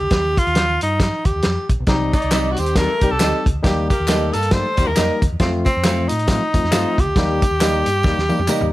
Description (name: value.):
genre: uptempo 1960s-style soul.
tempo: 136 BPM.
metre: 4/4.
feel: swing 59% on 8ths.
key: unclear.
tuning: A4 = 440 Hz.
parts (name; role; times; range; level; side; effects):
breathy tenor saxophone; melody; 0.0-8.7 s; C4 to C5; -21 LUFS; equal; none.
fingered electric bass; bass; 0.0-8.7 s; Bb1 to A2; -23 LUFS; equal; none.
warm soul drum kit; drums; 0.1-8.7 s; hi-hat, kick drum, snare drum, toms; -19 LUFS; equal; none.
barky tine electric piano; accompaniment; 1.9-8.7 s; F3 to Bb4; -24 LUFS; left 3 dB; none.
mellow horn section; second line; 2.1-4.9 s; G3 to D5; -28 LUFS; right 1 dB; none.
tambourine and handclaps; percussion; 2.1-8.6 s; none; -30 LUFS; left 2 dB; none.
semi-hollow electric guitar; stabs; 2.3-8.7 s; G4 to F5; -26 LUFS; right 6 dB; spring reverb.
room: light reverb.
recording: none.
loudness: -15 LUFS.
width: side -16 dB against mid.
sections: 0.0-8.7 A section.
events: drum fill 8.0-8.7.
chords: 0.1 Eb; 1.9 Cm; 3.6 Eb; 5.4 F; 7.2 Eb.